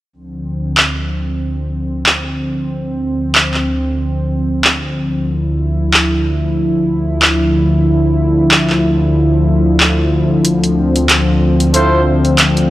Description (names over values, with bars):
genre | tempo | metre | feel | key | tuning
glitch hop | 93 BPM | 4/4 | swing 57% on 16ths | D minor | A4 = 442 Hz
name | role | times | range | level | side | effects
warm analog pad | sustained chords | 0.1-12.7 s | D2 to E4 | -13 LUFS | equal | chorus
dubstep drum kit | drums | 0.8-12.7 s | handclaps, hi-hat | -13 LUFS | equal | none
mellow horn section | stabs | 11.7-12.0 s | E4 to C5 | -15 LUFS | right 1 dB | tape echo
room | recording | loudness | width
moderate lush hall reverb, RT60 1.7 s, digital ambience | dry, gritty hardware recording, cassette tape | -12 LUFS | side -15 dB against mid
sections
0.1-12.7 A section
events
none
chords
0.1 Dm7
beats
| 0.13 0.77 1.42 2.06 | 2.71 3.35 4.00 4.64 | 5.29 5.93 6.58 7.22 | 7.87 8.52 9.16 9.80 | 10.45 11.10 11.74 12.39